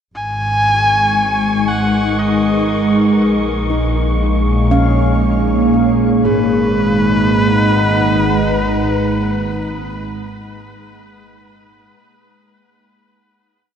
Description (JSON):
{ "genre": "ambient", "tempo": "59 BPM", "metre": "3/4", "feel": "straight", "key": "G# dorian", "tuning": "A4 = 440 Hz", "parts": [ { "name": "ethereal airy pad", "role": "sustained chords", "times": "1.0-10.1 s", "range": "A#2 to A#5", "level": "-16 LUFS", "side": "right 1 dB", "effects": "ensemble chorus, built-in reverb, phaser, shimmer reverb" }, { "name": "rich symphonic double bass section", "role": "bass", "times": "0.1-10.1 s", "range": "G#1 to A#1", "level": "-20 LUFS", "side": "equal", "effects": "none" }, { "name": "analog drone", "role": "drone", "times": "0.9-10.1 s", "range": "G#3 to D#4", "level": "-22 LUFS", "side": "equal", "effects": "chorus" }, { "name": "wind-like tuned noise texture", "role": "texture", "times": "0.8-6.3 s", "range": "C#6", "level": "-28 LUFS", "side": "right 1 dB", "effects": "built-in reverb, shimmer reverb" }, { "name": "rich electric violin", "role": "melody", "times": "0.2-10.1 s", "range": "B4 to G#5", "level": "-19 LUFS", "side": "equal", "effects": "shimmer reverb, ping-pong delay" }, { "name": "handpan", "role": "arpeggios", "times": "1.7-10.2 s", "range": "G#3 to E#5", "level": "-22 LUFS", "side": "right 1 dB", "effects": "shimmer reverb, ping-pong delay" } ], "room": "wet lush hall reverb, RT60 2.7 s", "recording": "dark, warm production", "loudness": "-12 LUFS", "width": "side -8 dB against mid", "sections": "0.1-6.2 A section; 6.2-9.3 final chord", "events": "fade-in on handpan 0.1-6.2", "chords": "0.1 G#m7; 3.2 A#m7; 6.2 G#m7" }